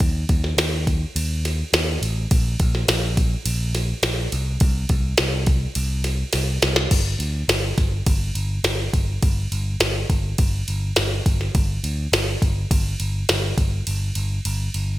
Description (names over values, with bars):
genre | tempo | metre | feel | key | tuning
hard rock | 104 BPM | 4/4 | straight | G minor | A4 = 440 Hz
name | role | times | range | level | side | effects
picked electric bass | bass | 0.0-15.0 s | G1 to Eb2 | -23 LUFS | equal | none
glitchy drum kit | drums | 0.0-14.9 s | crash cymbal, kick drum, ride cymbal, snare drum | -21 LUFS | equal | gated reverb
room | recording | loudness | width
light reverb | bright 1980s-style digital production | -19 LUFS | side -16 dB against mid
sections
0.0-6.9 A section; 6.9-15.0 B section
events
drum fill 6.3-6.9; break 13.9-15.0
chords
none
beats
| 0.01 0.59 1.16 1.74 | 2.31 2.89 3.46 4.04 | 4.62 5.19 5.77 6.34 | 6.92 7.50 8.07 8.65 | 9.23 9.81 10.39 10.97 | 11.55 12.13 12.71 13.29 | 13.87 14.45